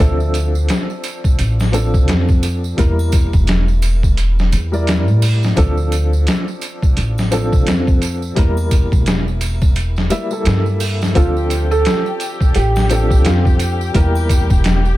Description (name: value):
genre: trip hop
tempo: 86 BPM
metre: 4/4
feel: swing 59% on 16ths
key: D minor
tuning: A4 = 440 Hz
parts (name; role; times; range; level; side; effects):
- dark upright piano; accompaniment; 0.0-15.0 s; F3 to E5; -22 LUFS; left 1 dB; tremolo, tape echo
- upright bass; bass; 0.0-15.0 s; E1 to A2; -16 LUFS; equal; none
- tambourine and triangle; percussion; 0.2-15.0 s; none; -33 LUFS; right 8 dB; none
- trip hop sampler-style drum kit; drums; 0.3-14.8 s; hi-hat, kick drum, snare drum; -16 LUFS; equal; overdrive
- felt-muted upright piano; melody; 11.2-13.8 s; F4 to A4; -21 LUFS; right 3 dB; tape echo
- muted studio string section; sustained chords; 11.2-15.0 s; G4; -26 LUFS; left 5 dB; none
room: small room ambience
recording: none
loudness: -13 LUFS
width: side -16 dB against mid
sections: 0.0-15.0 A section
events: none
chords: 0.0 Dm7; 2.8 Edim; 5.6 Dm7; 8.4 Edim; 11.2 Dm7; 13.9 Edim